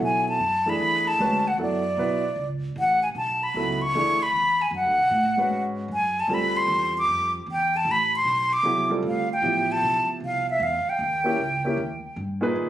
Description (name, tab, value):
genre	modal jazz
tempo	153 BPM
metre	4/4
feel	swing 64% on 8ths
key	unclear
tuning	A4 = 440 Hz
part	breathy concert flute	melody	0.0-12.2 s	D5 to D6	-22 LUFS	equal	plate reverb
part	warm grand piano	accompaniment	0.0-12.7 s	A#2 to B4	-27 LUFS	right 1 dB	none
part	upright bass	bass	0.0-12.7 s	A1 to A2	-33 LUFS	right 1 dB	none
room	moderate studio reverb, RT60 0.5 s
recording	recorded on a phone in the room, studio reverb, compression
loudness	-21 LUFS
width	side -12 dB against mid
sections	0.0-12.6 A section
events	none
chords	0.0 Bm11; 6.3 Dm11; 11.0 D#7b9